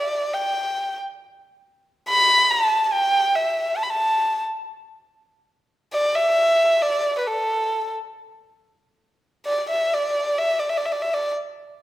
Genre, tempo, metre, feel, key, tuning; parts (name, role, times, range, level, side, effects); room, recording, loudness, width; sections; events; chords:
chinese traditional; 69 BPM; 4/4; rubato; D zhi mode; A4 = 440 Hz
warm erhu; solo; 0.0-11.3 s; A4 to B5; -19 LUFS; equal
wet recital hall reverb, RT60 1.5 s; -19 LUFS; side -14 dB against mid
0.0-11.8 A section